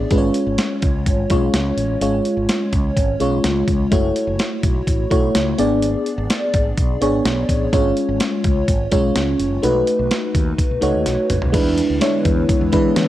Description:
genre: 1980s-style pop.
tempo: 126 BPM.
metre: 4/4.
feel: straight.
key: unclear.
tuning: A4 = 440 Hz.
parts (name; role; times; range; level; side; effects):
FM electric piano with soft pad layer; accompaniment; 0.0-13.1 s; G#3 to D5; -18 LUFS; equal; chorus, phaser.
mellow fretless electric bass; bass; 0.0-13.1 s; F#1 to E3; -23 LUFS; equal; none.
boom bap sampler-style drum kit; drums; 0.1-13.1 s; crash cymbal, hi-hat, kick drum, snare drum, toms; -20 LUFS; equal; none.
phased analog pad; sustained chords; 12.1-13.1 s; D3 to E4; -24 LUFS; equal; phaser, chorus.
room: light reverb.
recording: home recording on cassette.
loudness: -16 LUFS.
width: side -14 dB against mid.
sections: 0.0-11.5 A section; 11.5-13.1 B section.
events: drum fill 11.1-11.5.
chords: 0.1 C#/G#; 3.9 F#m7; 5.6 G#dim; 7.7 C#/G#; 9.6 B7; 11.5 E7.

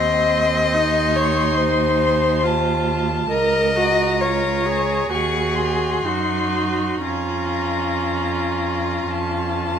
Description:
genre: classical, slow romantic movement for string quartet.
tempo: 57-72 BPM.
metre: 4/4.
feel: rubato.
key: Bb minor.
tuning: A4 = 440 Hz.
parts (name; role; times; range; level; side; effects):
warm violin; melody; 0.0-9.8 s; A5 to Db6; -25 LUFS; left 5 dB; none.
dark violin; second line; 0.0-9.8 s; F4 to Eb5; -22 LUFS; left 4 dB; none.
rich viola; accompaniment; 0.0-9.8 s; C4 to Bb4; -24 LUFS; right 3 dB; none.
clear cello; bass; 0.0-9.8 s; Db2 to Gb2; -24 LUFS; right 5 dB; none.
room: moderate large studio reverb, RT60 1.4 s.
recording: minimal, uncompressed stereo recording.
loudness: -17 LUFS.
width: side -8 dB against mid.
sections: 0.0-9.8 A section.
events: none.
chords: 0.0 F7/Eb; 3.3 Bbm/Db; 5.1 Ebm7; 7.0 Bbm/F.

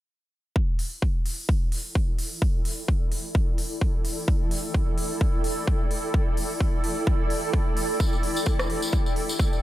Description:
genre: bass house.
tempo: 129 BPM.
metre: 4/4.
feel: swing 55% on 16ths.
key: E minor.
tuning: A4 = 441 Hz.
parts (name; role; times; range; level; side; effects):
electronic kick drum; drums; 0.6-9.5 s; none; -23 LUFS; equal; overdrive.
granular cloud pad; texture; 2.1-9.6 s; E4 to G5; -30 LUFS; right 1 dB; built-in reverb, sidechain pumping.
big-room dance drum kit; drums; 0.8-9.3 s; hi-hat, rim click; -34 LUFS; equal; none.
tambourine; percussion; 8.0-9.6 s; none; -33 LUFS; left 2 dB; none.
room: little or no reverb.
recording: none.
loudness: -23 LUFS.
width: side -14 dB against mid.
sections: 0.6-9.6 A section.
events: none.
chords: 0.6 Em.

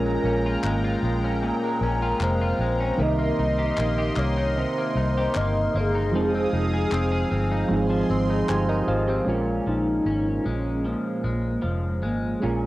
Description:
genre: indie pop, bedroom pop.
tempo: 76 BPM.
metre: 4/4.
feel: straight.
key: Bb dorian.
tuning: A4 = 439 Hz.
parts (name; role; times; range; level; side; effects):
soft octave-layered synth lead; melody; 0.0-12.7 s; Ab3 to Eb5; -28 LUFS; equal; tremolo, lush chorus, cassette tape.
electric guitar through a small old amp; accompaniment; 0.0-12.7 s; Bb2 to Ab4; -29 LUFS; left 2 dB; analog chorus, warbly pitch drift, cassette tape.
soft electric-piano-like synth keys; accompaniment; 0.0-12.7 s; Eb3 to Ab5; -27 LUFS; right 2 dB; chorus, cassette tape.
phased analog pad; sustained chords; 0.0-9.3 s; Ab4 to Eb6; -31 LUFS; left 1 dB; phaser, chorus, cassette tape.
vintage muted fingered electric bass; bass; 0.0-12.7 s; F1 to C2; -26 LUFS; equal; none.
group handclap; percussion; 0.6-8.7 s; none; -35 LUFS; left 3 dB; none.
room: light reverb.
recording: home recording on cassette.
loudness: -21 LUFS.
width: side -16 dB against mid.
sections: 0.0-9.3 A section; 9.3-12.7 B section.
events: synth keys fill 8.1-9.3.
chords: 0.0 Bbm7; 3.0 Cm7; 6.1 Fm7; 7.7 Ab6; 9.3 Bbm7.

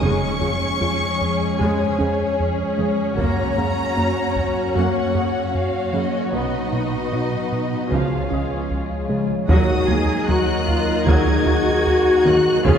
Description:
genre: cinematic, hybrid orchestral and electronic film score.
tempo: 76 BPM.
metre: 4/4.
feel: straight.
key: Eb minor.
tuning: A4 = 440 Hz.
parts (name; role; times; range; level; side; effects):
warm studio violin section; melody; 0.0-12.8 s; Db5 to Ab6; -28 LUFS; left 2 dB; none.
warm symphonic violin section; second line; 0.0-12.8 s; F4 to Eb5; -28 LUFS; left 3 dB; none.
warm symphonic viola section; accompaniment; 0.0-12.8 s; Db3 to Ab4; -27 LUFS; right 1 dB; none.
dark analog pad; sustained chords; 0.0-12.8 s; F3 to Eb5; -25 LUFS; left 2 dB; chorus, phaser.
glassy wavetable pluck; arpeggios; 0.0-12.8 s; Db3 to Gb4; -28 LUFS; right 1 dB; chorus.
rubbery square bass; riff; 0.0-12.8 s; Db2 to Gb3; -25 LUFS; right 2 dB; none.
dark symphonic cello section; bass; 0.0-12.8 s; F2 to Ab4; -24 LUFS; left 1 dB; none.
warm symphonic double bass section; bass; 0.0-12.7 s; F1 to F2; -27 LUFS; right 2 dB; none.
bright grand piano; texture; 0.0-12.8 s; Bb4 to Bb6; -40 LUFS; equal; none.
taiko ensemble; drums; 3.2-4.7, 9.5-12.8 s; none; -22 LUFS; equal; none.
dark French horn section; sustained chords; 9.5-12.8 s; Gb3 to Ab4; -25 LUFS; left 1 dB; none.
dark trombone section; sustained chords; 9.5-12.8 s; Bb2 to Ab3; -32 LUFS; right 2 dB; none.
room: wet scoring stage reverb, RT60 2.1 s.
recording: recorded in a church or concert hall.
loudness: -17 LUFS.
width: side -8 dB against mid.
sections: 0.0-9.5 A section; 9.5-12.8 A section.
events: none.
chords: 0.0 Db/F; 3.2 Gb; 6.3 B; 7.9 Db; 9.5 Ebm.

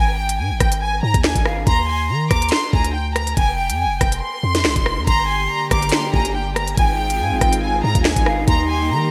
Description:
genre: hip hop, drill.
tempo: 141 BPM.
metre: 4/4.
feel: half-time.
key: unclear.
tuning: A4 = 441 Hz.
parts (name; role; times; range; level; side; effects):
warm studio violin section; melody; 0.0-9.1 s; G5 to D6; -24 LUFS; equal; none.
breathy jazz flute; second line; 0.0-9.1 s; F5 to C6; -28 LUFS; equal; digital delay.
long sustained 808-style bass; bass; 0.0-9.1 s; F1 to Eb3; -25 LUFS; equal; none.
drill drum kit; drums; 0.3-8.6 s; handclaps, hi-hat, kick drum, rim click, snare drum; -21 LUFS; equal; gated reverb.
dark studio string section; sustained chords; 5.1-9.1 s; D3 to G4; -27 LUFS; equal; none.
room: light reverb.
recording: bright 1980s-style digital production.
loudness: -19 LUFS.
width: mono.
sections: 0.0-9.1 A section.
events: none.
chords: 0.0 Ab5; 1.7 Eb5; 3.4 Fsus2; 5.1 Gm; 6.8 Ab6; 8.5 Eb.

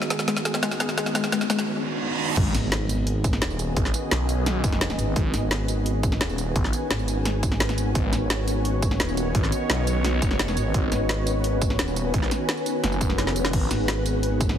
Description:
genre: dark technical drum and bass.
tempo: 172 BPM.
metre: 4/4.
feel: straight.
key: G# minor.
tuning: A4 = 440 Hz.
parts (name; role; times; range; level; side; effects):
sweeping resonant pad; sustained chords; 0.0-14.6 s; D#3 to C#5; -31 LUFS; right 1 dB; wide subtle chorus, sidechain pumping.
warbly dusty pluck; arpeggios; 0.0-1.6 s; G#3 to G#4; -27 LUFS; left 4 dB; chorus, sidechain pumping, ping-pong delay.
drum and bass drum kit; drums; 0.0-14.6 s; crash cymbal, hi-hat, snare drum, tambourine, toms; -27 LUFS; equal; overdrive, high-pass filter on snare, studio reverb, high-pass filter on hats, high-pass filter on perc, high-pass filter on toms, high-pass filter on cymbals.
riser, reverse cymbal and impact; sound effects; 0.0-3.8 s; none; -31 LUFS; right 2 dB; none.
ethereal airy pad; texture; 0.0-14.6 s; G#3 to G#5; -31 LUFS; left 1 dB; ensemble chorus, built-in reverb, sidechain pumping.
phased detuned saw bass; bass; 2.4-13.7 s; F#1 to B1; -26 LUFS; equal; phaser, tube saturation, sidechain pumping.
electronic kick drum; drums; 2.4-14.5 s; none; -25 LUFS; equal; studio reverb.
growling FM bass; bass; 2.5-14.6 s; D#1 to G#1; -26 LUFS; equal; none.
room: moderate lush hall reverb, RT60 2.0 s.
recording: heavily compressed radio sound.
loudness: -21 LUFS.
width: side -9 dB against mid.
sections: 0.0-2.4 A section; 2.4-14.6 B section.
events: build-up 0.0-2.4; drum fill 0.0-1.7, 2.0-2.4, 13.2-13.5; riser 0.0-2.4; break 1.7-2.4; reverse cymbal 1.7-2.4; drop 2.4-14.6; impact 2.4-3.8.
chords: 0.0 G#m.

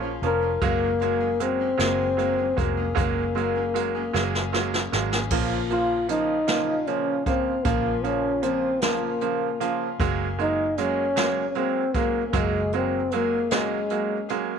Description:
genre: six-eight pop ballad.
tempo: 51 BPM (dotted quarters).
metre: 6/8.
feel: straight.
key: Bb minor.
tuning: A4 = 440 Hz.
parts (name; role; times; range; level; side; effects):
bright concert grand piano; accompaniment; 0.0-14.6 s; Db3 to Db4; -27 LUFS; right 13 dB; none.
picked steel-string acoustic guitar; arpeggios; 0.0-14.6 s; Bb2 to Ab4; -34 LUFS; left 14 dB; none.
vintage muted fingered electric bass; bass; 0.0-14.6 s; F1 to Bb1; -31 LUFS; left 1 dB; none.
jazz brush drum kit; drums; 0.2-14.5 s; crash cymbal, hi-hat, kick drum, snare drum; -28 LUFS; equal; none.
breathy trombone; melody; 0.3-14.4 s; Ab3 to Bb4; -25 LUFS; left 3 dB; none.
room: light reverb, studio ambience.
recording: 1960s-style stereo with parts hard left and right.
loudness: -22 LUFS.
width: side -7 dB against mid.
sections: 0.0-5.3 A section; 5.3-14.6 B section.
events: drum fill 4.1-5.3.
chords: 0.0 Bbm; 0.6 Gbadd9; 5.3 Bbm; 10.0 Gbadd9.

